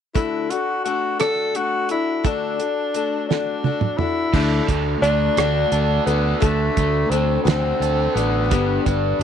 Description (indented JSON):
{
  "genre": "folk rock and heartland rock",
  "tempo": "57 BPM (dotted quarters)",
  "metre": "6/8",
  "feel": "straight",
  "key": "D mixolydian",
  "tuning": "A4 = 439 Hz",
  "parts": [
    { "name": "warm tenor saxophone", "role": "melody", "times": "0.1-9.2 s", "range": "A3 to A4", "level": "-22 LUFS", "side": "left 2 dB", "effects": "none" },
    { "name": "picked acoustic archtop guitar", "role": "accompaniment", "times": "0.1-9.2 s", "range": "G2 to A4", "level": "-25 LUFS", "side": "left 10 dB", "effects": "none" },
    { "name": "damped 70s drum kit", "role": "drums", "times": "0.2-9.2 s", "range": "crash cymbal, hi-hat, kick drum, rim click, snare drum, toms", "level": "-23 LUFS", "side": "right 4 dB", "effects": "none" },
    { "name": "overdriven electric guitar", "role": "riff", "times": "4.3-9.2 s", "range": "D3 to A4", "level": "-25 LUFS", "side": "right 3 dB", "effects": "none" },
    { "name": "fingered electric bass", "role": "bass", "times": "4.3-9.2 s", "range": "G1 to D2", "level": "-22 LUFS", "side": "right 1 dB", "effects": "none" }
  ],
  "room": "light reverb, studio ambience",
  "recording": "1960s-style stereo",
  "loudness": "-18 LUFS",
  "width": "side -8 dB against mid",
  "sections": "0.1-4.3 A section; 4.3-9.2 B section",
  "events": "drum fill 3.3-4.3",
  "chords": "0.1 D; 8.5 G"
}